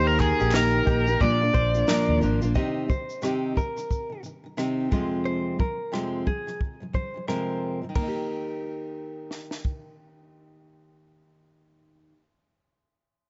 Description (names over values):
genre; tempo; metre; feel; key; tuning
acoustic pop; 89 BPM; 4/4; swing 60% on 16ths; Eb major; A4 = 440 Hz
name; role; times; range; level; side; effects
overdriven slide guitar; melody; 0.0-2.2 s; Ab4 to D5; -27 LUFS; equal; none
fingerpicked steel-string acoustic guitar; accompaniment; 0.0-12.2 s; F2 to G4; -30 LUFS; equal; none
direct-recorded clean electric guitar; arpeggios; 0.0-9.9 s; G4 to Eb5; -36 LUFS; equal; none
fretless electric bass; bass; 0.0-2.5 s; Ab1 to Bb2; -27 LUFS; equal; none
compact cocktail drum kit; drums; 0.2-9.8 s; kick drum, ride cymbal, rim click, shaker, snare drum; -30 LUFS; equal; none
group handclap; percussion; 0.2-2.1 s; none; -40 LUFS; equal; none
room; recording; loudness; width
light reverb; dark, warm production, nothing above 7.7 kHz; -26 LUFS; mono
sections
0.0-2.6 A section; 2.6-8.0 B section; 8.0-10.7 C section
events
none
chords
0.0 Eb; 1.2 Bb; 2.6 Cm; 4.9 Fm; 8.0 Eb